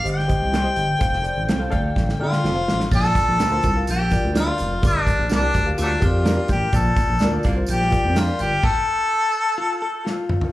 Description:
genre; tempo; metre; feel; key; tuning
uptempo 1960s-style soul; 126 BPM; 4/4; straight; unclear; A4 = 441 Hz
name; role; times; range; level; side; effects
warm harmonica; melody; 0.0-10.3 s; F#3 to G5; -22 LUFS; left 2 dB; none
reed electric piano; accompaniment; 0.0-8.5 s; G2 to G5; -28 LUFS; left 2 dB; fast tremolo, slapback echo
smooth gliding synth bass; bass; 0.1-8.6 s; F1 to D3; -22 LUFS; equal; none
natural country drum kit; drums; 0.1-10.5 s; crash cymbal, hi-hat, kick drum, snare drum, toms; -23 LUFS; equal; none
electric guitar through a small old amp; stabs; 0.5-8.3 s; C4 to C5; -30 LUFS; right 4 dB; wide subtle chorus, slapback echo
glockenspiel with brass mallets; second line; 2.2-8.6 s; D6 to A6; -33 LUFS; right 2 dB; slapback echo
tambourine; percussion; 2.9-8.5 s; none; -42 LUFS; right 3 dB; none
direct-recorded clean electric guitar; riff; 5.8-6.7, 9.6-10.5 s; F4 to Bb4; -29 LUFS; left 4 dB; wide subtle chorus, slapback echo
bright saxophone section; second line; 7.4-7.6 s; D3 to F4; -34 LUFS; right 1 dB; slapback echo
room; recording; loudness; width
studio reverb; live gig heard through the venue's PA, club reverb; -18 LUFS; side -15 dB against mid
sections
0.0-2.9 A section; 2.9-10.5 B section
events
drum fill 2.0-2.9, 10.1-10.5; stop 8.6-10.5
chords
0.1 Cm/G; 1.0 F; 1.7 Dm; 2.4 F; 2.9 Bb; 4.8 Gm; 6.7 Bb; 8.6 N.C.

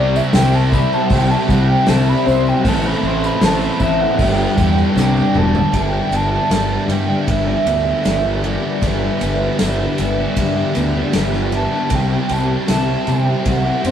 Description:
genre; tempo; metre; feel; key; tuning
rock, shoegaze and dream pop; 78 BPM; 4/4; straight; G major; A4 = 440 Hz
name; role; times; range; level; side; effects
warm velvety synth lead; melody; 0.0-13.9 s; B4 to C6; -22 LUFS; right 2 dB; chorus
string machine, cellos; sustained chords; 0.0-13.9 s; G4 to C6; -31 LUFS; equal; none
picked twelve-string acoustic guitar; arpeggios; 0.0-13.9 s; E3 to E4; -23 LUFS; left 2 dB; none
overdriven electric guitar; riff; 0.0-13.9 s; G2 to A4; -22 LUFS; right 3 dB; none
sludgy distorted guitar; riff; 0.0-5.7 s; G2 to C4; -23 LUFS; equal; overdrive
thick fuzz guitar; riff; 0.0-13.9 s; G2 to C4; -24 LUFS; left 4 dB; distortion
fuzz fingered electric bass; bass; 0.0-13.9 s; E1 to C3; -20 LUFS; equal; overdrive
tambourine; percussion; 0.2-13.9 s; none; -40 LUFS; left 4 dB; none
loose indie drum kit; drums; 0.3-13.9 s; hi-hat, kick drum, ride cymbal, snare drum, toms; -21 LUFS; equal; none
room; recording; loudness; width
wet stone room reverb, RT60 1.4 s; rough rehearsal-room recording; -14 LUFS; side -9 dB against mid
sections
0.0-5.7 A section; 5.7-13.9 B section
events
drum fill 5.0-5.7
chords
0.0 C; 2.7 Am; 4.2 G; 5.7 G6; 11.9 C

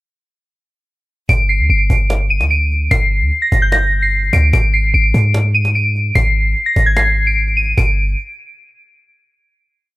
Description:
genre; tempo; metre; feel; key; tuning
hip hop, trap; 148 BPM; 4/4; half-time; G phrygian; A4 = 441 Hz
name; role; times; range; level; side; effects
soft synth bell; melody; 1.3-8.0 s; G6 to Eb7; -15 LUFS; equal; chorus, low-pass filter
clean 808-style bass; bass; 1.3-8.2 s; G1 to Ab2; -15 LUFS; equal; none
cajon; drums; 1.3-7.9 s; none; -22 LUFS; equal; none
room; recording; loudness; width
small room ambience; dry, gritty hardware recording; -12 LUFS; side -18 dB against mid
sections
1.3-7.8 hook; 7.8-9.4 final chord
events
none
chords
1.3 G5; 4.5 Ab; 7.8 G5

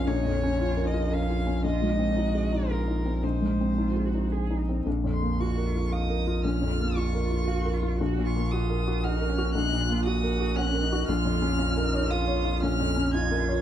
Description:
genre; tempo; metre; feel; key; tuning
neoclassical piano and strings; 115 BPM; 3/4; rubato; Bb minor; A4 = 440 Hz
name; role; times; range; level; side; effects
rich violin; melody; 0.0-13.6 s; Bb4 to Ab6; -33 LUFS; left 1 dB; slapback echo
rich cello; second line; 0.0-13.6 s; Db4 to Ab4; -34 LUFS; right 9 dB; none
felt-muted upright piano; accompaniment; 0.0-13.6 s; Bb1 to Gb5; -28 LUFS; left 2 dB; none
saturated sub bass; bass; 0.0-13.6 s; Bb1; -28 LUFS; equal; none
room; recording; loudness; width
moderate large studio reverb, RT60 1.3 s; dark, warm production; -24 LUFS; side -10 dB against mid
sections
0.0-4.9 A section; 4.9-13.6 B section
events
none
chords
0.0 Bbm; 1.6 Ab/Bb; 4.9 Bbm; 8.0 Ebm/Bb; 11.1 Bbm

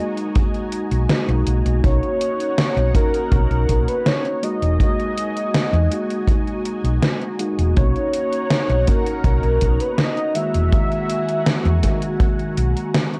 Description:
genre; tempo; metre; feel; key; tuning
vaporwave; 81 BPM; 4/4; straight; E lydian; A4 = 439 Hz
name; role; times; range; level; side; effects
warm velvety synth lead; melody; 0.0-12.6 s; A#4 to E5; -27 LUFS; equal; chorus, tape echo
mellow tine electric piano; accompaniment; 0.0-13.2 s; D#3 to F#4; -27 LUFS; equal; analog chorus
lush unison pad; sustained chords; 0.0-13.2 s; D#4 to A#5; -35 LUFS; equal; chorus, phaser, vintage 12-bit sampler grit
gated 80s digital drum machine; drums; 0.2-13.2 s; hi-hat, snare drum; -24 LUFS; equal; gated reverb, gated reverb snare, overdrive
kick drum; drums; 0.4-12.4 s; none; -21 LUFS; equal; none
hollow-body short-scale fingered electric bass; bass; 0.9-12.7 s; E1 to E2; -21 LUFS; equal; none
room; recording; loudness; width
light reverb, digital ambience; worn, warbling old tape, cassette tape, warbly pitch drift; -19 LUFS; mono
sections
0.0-13.2 A section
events
none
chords
0.0 Emaj9#11 (rootless); 1.8 Bmaj9; 4.4 Emaj9#11; 7.8 Bmaj9; 10.4 Emaj9#11

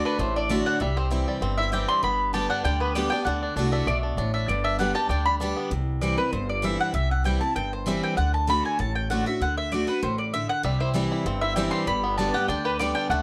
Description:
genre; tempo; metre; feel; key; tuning
bluegrass; 195 BPM; 4/4; straight; G major; A4 = 440 Hz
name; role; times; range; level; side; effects
bluegrass banjo; melody; 0.0-5.7, 10.6-13.2 s; D3 to G4; -33 LUFS; equal; none
mandolin; melody; 0.0-13.2 s; B4 to C6; -29 LUFS; equal; none
picked steel-string acoustic guitar; accompaniment; 0.0-13.2 s; G2 to G4; -31 LUFS; equal; none
upright bass; bass; 0.2-13.2 s; G1 to D2; -31 LUFS; equal; none
room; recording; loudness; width
light reverb; none; -25 LUFS; mono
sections
0.0-5.7 A section; 5.7-13.2 A section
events
none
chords
0.0 D; 0.8 C; 2.0 G; 3.3 D; 4.5 G; 5.7 C; 8.2 D; 10.6 C; 11.9 G

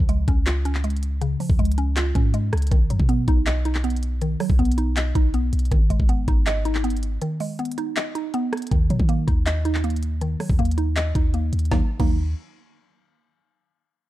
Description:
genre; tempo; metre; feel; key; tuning
hip hop, trap; 160 BPM; 4/4; half-time; Eb minor; A4 = 440 Hz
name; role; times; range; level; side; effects
mallet-like synth pluck; accompaniment; 0.0-12.2 s; Db3 to D#5; -26 LUFS; right 1 dB; chorus, phaser, low-pass filter
clean 808-style bass; bass; 0.0-12.3 s; Ab1 to Eb3; -22 LUFS; equal; none
trap drum kit; drums; 0.0-12.1 s; crash cymbal, handclaps, hi-hat, kick drum, rim click, snare drum; -22 LUFS; equal; none
room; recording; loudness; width
little or no reverb; dark, warm production; -19 LUFS; side -15 dB against mid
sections
0.0-8.7 A section; 8.7-11.7 B section; 11.7-13.2 C section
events
break 7.2-8.7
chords
0.0 Db; 2.7 B; 5.7 Abm; 8.7 Ebm

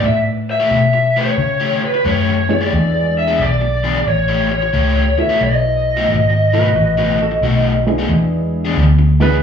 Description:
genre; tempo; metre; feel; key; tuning
electric blues shuffle; 90 BPM; 4/4; swing 67% on 8ths; E mixolydian; A4 = 440 Hz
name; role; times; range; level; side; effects
lead guitar through a small cranked amp; melody; 0.0-7.8 s; B4 to E5; -17 LUFS; left 1 dB; overdrive, slapback echo
crunchy overdriven guitar; riff; 0.0-9.4 s; B2 to C#5; -21 LUFS; left 5 dB; slapback echo
vintage muted fingered electric bass; bass; 0.0-9.4 s; G#1 to C#3; -16 LUFS; equal; none
honky-tonk upright piano; accompaniment; 2.5-9.4 s; G#3 to A4; -21 LUFS; right 4 dB; slapback echo
clean lap steel guitar; second line; 6.5-9.4 s; F#4 to B4; -24 LUFS; right 7 dB; slapback echo
room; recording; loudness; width
light reverb, digital ambience; live gig heard through the venue's PA, club reverb; -13 LUFS; side -7 dB against mid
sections
0.0-8.1 A section; 8.1-9.4 B section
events
none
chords
0.0 A7; 2.7 E7; 4.1 A7; 5.4 B7; 8.1 E7

